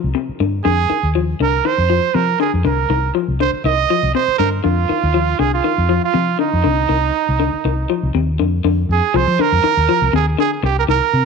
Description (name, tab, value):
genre	afrobeat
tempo	120 BPM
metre	4/4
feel	swing 55% on 16ths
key	F dorian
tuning	A4 = 441 Hz
part	electric guitar through a small old amp	arpeggios	0.0-11.1 s	C3 to F3	-20 LUFS	left 13 dB	none
part	vintage muted fingered electric bass	bass	0.0-11.2 s	C2 to F3	-18 LUFS	left 1 dB	none
part	bright trumpet	melody	0.6-11.2 s	Eb4 to Eb5	-17 LUFS	right 12 dB	slapback echo
room	light reverb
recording	1960s-style stereo with parts hard left and right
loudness	-14 LUFS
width	side -5 dB against mid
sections	0.0-8.6 A section; 8.6-11.2 B section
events	none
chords	0.0 C5; 0.6 Fm7; 2.6 Cm7; 4.6 F5